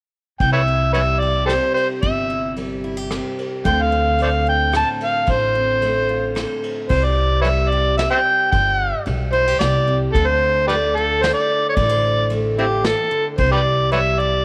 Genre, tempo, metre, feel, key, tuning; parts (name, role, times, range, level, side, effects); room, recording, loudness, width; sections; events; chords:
honky-tonk and classic country; 111 BPM; 3/4; straight; C major; A4 = 438 Hz
overdriven harmonica; melody; 0.4-14.4 s; C4 to A5; -20 LUFS; equal
picked steel-string acoustic guitar; accompaniment; 0.4-14.4 s; A2 to C5; -28 LUFS; equal
upright bass; bass; 0.4-14.4 s; G1 to D2; -24 LUFS; equal
vintage brush drum kit; drums; 0.4-14.0 s; crash cymbal, kick drum, ride cymbal, rim click, snare drum; -31 LUFS; equal
moderate spring reverb, RT60 1.9 s; -18 LUFS; mono
0.4-6.9 A section; 6.9-14.4 B section
0.4 C; 3.7 Dm7; 6.9 C5; 10.1 Dm7; 13.4 C5